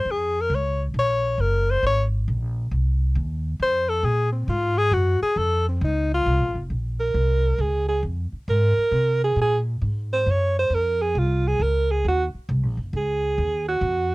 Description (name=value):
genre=jazz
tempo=135 BPM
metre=3/4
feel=swing 67% on 8ths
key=Bb minor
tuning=A4 = 440 Hz
part: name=breathy tenor saxophone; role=melody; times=0.0-6.6 s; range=C4 to Db5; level=-22 LUFS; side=left 2 dB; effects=none
part: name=upright bass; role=bass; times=0.0-14.1 s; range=F1 to C3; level=-23 LUFS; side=equal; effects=none
part: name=clear alto saxophone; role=second line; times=7.0-14.1 s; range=F4 to Db5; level=-22 LUFS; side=right 2 dB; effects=none
room=little or no reverb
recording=dry, close 1970s-style studio recording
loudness=-20 LUFS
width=side -21 dB against mid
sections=0.0-6.7 A section; 6.7-14.1 A section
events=tenor saxophone solo 0.0-6.7; alto saxophone solo 6.7-14.1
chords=0.0 Bbm7; 1.4 Gb; 2.7 F5; 4.1 Absus2; 4.9 Gbsus2; 5.4 F; 6.7 Bbm9; 12.0 Ebm9